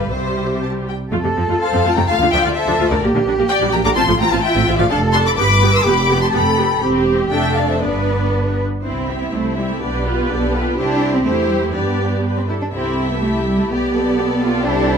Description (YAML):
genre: quick classical-period movement for string orchestra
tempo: 125 BPM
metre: 2/4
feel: rubato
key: F major, C major from 4.9 s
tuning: A4 = 439 Hz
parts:
  - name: warm symphonic violin section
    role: melody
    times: 0.0-15.0 s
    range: E4 to E6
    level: -22 LUFS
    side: left 5 dB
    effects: none
  - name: clear symphonic violin section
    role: second line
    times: 0.0-15.0 s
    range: E4 to C6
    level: -23 LUFS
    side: left 4 dB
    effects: none
  - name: clear symphonic viola section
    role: accompaniment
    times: 0.0-15.0 s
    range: C3 to B4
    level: -21 LUFS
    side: right 1 dB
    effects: none
  - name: rich symphonic double bass section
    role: bass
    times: 0.0-15.0 s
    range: E1 to G2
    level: -21 LUFS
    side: right 2 dB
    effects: none
  - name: warm symphonic cello section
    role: bass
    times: 0.0-15.0 s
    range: C3 to B4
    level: -20 LUFS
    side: right 2 dB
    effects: none
room: moderate recital hall reverb, RT60 1.7 s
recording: none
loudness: -15 LUFS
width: side -6 dB against mid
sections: 0.0-1.1 A section; 1.1-8.8 B section; 8.8-15.0 A section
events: none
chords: 0.1 C; 1.1 F; 2.1 Dm; 3.0 Gm/Bb; 4.0 F/A; 4.9 Dm/F; 5.4 G; 5.9 G7/F; 6.8 C/E; 7.3 Dm/F; 7.8 G; 8.8 C; 9.8 G7/B; 10.8 C; 11.3 C/E; 11.7 G; 12.7 C; 13.7 G7/B